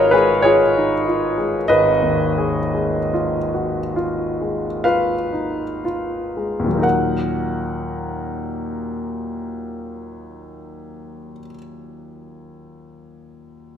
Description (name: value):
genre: classical, impressionist solo piano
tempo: 28-50 BPM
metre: 3/4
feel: rubato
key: Eb minor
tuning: A4 = 440 Hz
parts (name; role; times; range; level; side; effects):
- clear grand piano; solo; 0.0-13.8 s; Ab1 to Ab5; -18 LUFS; left 1 dB; none
room: moderate recital hall reverb, RT60 1.5 s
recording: none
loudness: -18 LUFS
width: side -8 dB against mid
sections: 0.0-6.8 A section; 6.8-12.4 B section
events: slowing down 0.0-6.8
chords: 0.0 Abm6; 6.8 Ebm